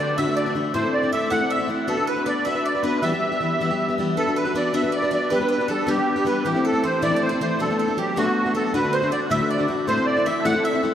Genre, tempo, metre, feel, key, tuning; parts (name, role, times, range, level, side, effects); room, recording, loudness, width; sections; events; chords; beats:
celtic folk, Celtic jig; 105 BPM (dotted quarters); 6/8; straight; A4 = 440 Hz
musette accordion; melody; 0.0-10.8 s; F#4 to F#5; -23 LUFS; right 1 dB
bowl-back mandolin; second line; 0.0-10.8 s; F#4 to F#5; -30 LUFS; right 4 dB
mellow small bagpipes; second line; 0.0-4.0, 8.7-10.9 s; A4 to A5; -32 LUFS; left 2 dB
picked plugged-in steel-string acoustic guitar; accompaniment; 0.0-10.9 s; D2 to B4; -23 LUFS; left 2 dB
wet cathedral reverb, RT60 5.7 s; in a vast, echoing space; -19 LUFS; side -10 dB against mid
0.0-4.2 A section; 4.2-10.9 A section
0.0 D; 0.7 Am; 1.9 Bm; 3.0 Em; 4.2 Bm; 5.3 G; 6.5 Am; 7.6 Bm7; 8.7 D; 9.9 Am
0.17 | 0.74 1.31 | 1.88 2.46 | 3.03 3.60 | 4.17 4.74 | 5.31 5.88 | 6.46 7.03 | 7.60 8.17 | 8.74 9.31 | 9.88 10.45